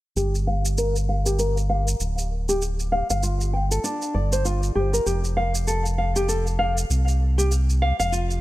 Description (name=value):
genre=organic downtempo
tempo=98 BPM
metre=4/4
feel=swing 58% on 16ths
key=G minor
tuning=A4 = 441 Hz
part: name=nylon-string guitar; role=arpeggios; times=0.2-8.4 s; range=D4 to G5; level=-25 LUFS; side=equal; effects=low-pass filter, digital delay
part: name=round analog bass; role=bass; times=0.2-8.4 s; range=D1 to C2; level=-22 LUFS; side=equal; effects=none
part: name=shaker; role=drums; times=0.2-8.4 s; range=none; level=-31 LUFS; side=right 2 dB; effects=none
room=small room ambience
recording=none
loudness=-20 LUFS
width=side -16 dB against mid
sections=0.2-8.4 A section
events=filter sweep on analog synth bass 0.2-8.4; filter sweep on nylon-string guitar 0.2-8.4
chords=0.2 G5; 5.1 F5